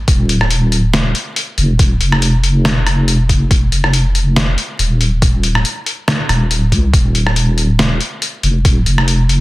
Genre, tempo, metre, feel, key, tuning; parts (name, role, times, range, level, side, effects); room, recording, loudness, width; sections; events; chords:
deep dubstep; 140 BPM; 4/4; swing 55% on 16ths, half-time; A4 = 440 Hz
deep soft wobble bass; bass; 0.1-9.4 s; Eb1 to Db2; -13 LUFS; equal; chorus
electronic kick drum; drums; 0.1-8.7 s; -13 LUFS; equal
trip hop sampler-style drum kit; drums; 0.1-9.4 s; hi-hat, rim click, snare drum; -17 LUFS; left 1 dB
little or no reverb; dense, heavily limited modern master, vinyl crackle; -11 LUFS; side -18 dB against mid
0.0-9.4 A section